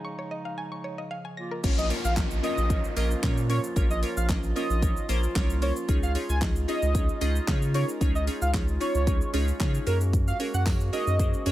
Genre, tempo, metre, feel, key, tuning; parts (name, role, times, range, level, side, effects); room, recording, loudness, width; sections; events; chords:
dance-pop; 113 BPM; 4/4; straight; Bb minor; A4 = 441 Hz
glassy wavetable pluck; accompaniment; 0.0-11.5 s; Bb3 to Eb5; -32 LUFS; equal; chorus, sidechain pumping, low-pass filter
mellow woodwind section; sustained chords; 0.0-11.5 s; Db3 to Gb4; -37 LUFS; right 1 dB; sidechain pumping, low-pass filter
mallet-like synth pluck; arpeggios; 0.0-1.6 s; Bb4 to Bb6; -37 LUFS; equal; chorus, sidechain pumping, low-pass filter, digital delay
round analog bass; bass; 1.6-11.5 s; Bb1 to Db3; -26 LUFS; equal; sidechain pumping
pop drum kit; drums; 1.6-11.5 s; crash cymbal, handclaps, hi-hat, kick drum, shaker, snare drum; -28 LUFS; equal
downlifter; sound effects; 1.6-5.9 s; -39 LUFS; left 1 dB
octave-doubled lead; melody; 1.8-11.4 s; Bb4 to Ab5; -32 LUFS; right 1 dB; chorus, sidechain pumping, digital delay
tambourine; percussion; 10.7-10.8 s; -45 LUFS; right 4 dB
little or no reverb; -24 LUFS; side -14 dB against mid
0.0-1.6 A section; 1.6-11.5 B section
drop 1.6-11.5
0.0 Dbadd9; 1.4 Bbm; 5.9 Dbadd9; 9.9 Gbadd9